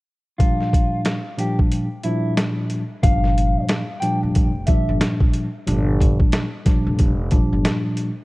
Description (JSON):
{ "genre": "hip hop, boom-bap hip-hop", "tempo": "91 BPM", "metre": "4/4", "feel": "swing 62% on 16ths", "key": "G dorian", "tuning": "A4 = 440 Hz", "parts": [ { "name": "mellow electric guitar", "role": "melody", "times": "0.4-5.0 s", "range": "E4 to G5", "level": "-27 LUFS", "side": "left 1 dB", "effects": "digital delay" }, { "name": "mellow tine electric piano", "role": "accompaniment", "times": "0.4-8.1 s", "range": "Bb2 to D4", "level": "-22 LUFS", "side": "equal", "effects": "medium stereo tremolo, cassette tape" }, { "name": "boom bap sampler-style drum kit", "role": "drums", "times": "0.4-8.2 s", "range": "hi-hat, kick drum, snare drum", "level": "-19 LUFS", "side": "equal", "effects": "none" }, { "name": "upright bass", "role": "bass", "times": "3.0-7.6 s", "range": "F1 to G1", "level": "-23 LUFS", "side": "equal", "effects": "none" } ], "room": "light reverb, digital ambience", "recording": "worn, warbling old tape, cassette tape, warbly pitch drift", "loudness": "-17 LUFS", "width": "side -21 dB against mid", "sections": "0.4-3.0 A section; 3.0-8.2 B section", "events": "break 1.7-3.0", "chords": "0.4 Gm7", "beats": "| 0.40 1.05 1.71 2.37 | 3.03 3.69 4.35 5.01 | 5.67 6.33 6.99 7.65" }